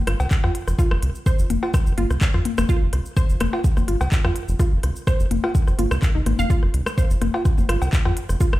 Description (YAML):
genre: minimal techno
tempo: 126 BPM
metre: 4/4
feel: straight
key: unclear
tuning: A4 = 439 Hz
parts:
  - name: round analog bass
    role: bass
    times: 0.0-8.6 s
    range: F1 to F2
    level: -22 LUFS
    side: equal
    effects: sidechain pumping
  - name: impact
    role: sound effects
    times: 0.6-0.8 s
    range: none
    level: barely audible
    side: none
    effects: none
  - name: resonant blip pluck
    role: riff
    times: 0.1-8.5 s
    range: Eb4 to F5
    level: -29 LUFS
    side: right 2 dB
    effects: chorus, sidechain pumping, dub echo
  - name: minimal click drum kit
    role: drums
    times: 0.1-8.5 s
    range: handclaps, hi-hat, shaker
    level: -33 LUFS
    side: equal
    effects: none
  - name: booming analog drum machine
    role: percussion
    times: 0.1-8.6 s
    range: claves, cowbell, rim click, toms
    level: -27 LUFS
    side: left 4 dB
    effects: ping-pong delay
  - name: electronic kick drum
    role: drums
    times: 0.3-8.5 s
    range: none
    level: -19 LUFS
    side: equal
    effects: none
room: little or no reverb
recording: played on a big sound system in a bare room, stone room reverb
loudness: -18 LUFS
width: side -16 dB against mid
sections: 0.0-8.6 A section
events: impact 0.0-0.8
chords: none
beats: 0.31 | 0.79 1.26 1.74 2.21 | 2.69 3.17 3.64 4.12 | 4.59 5.07 5.55 6.02 | 6.50 6.98 7.45 7.93 | 8.40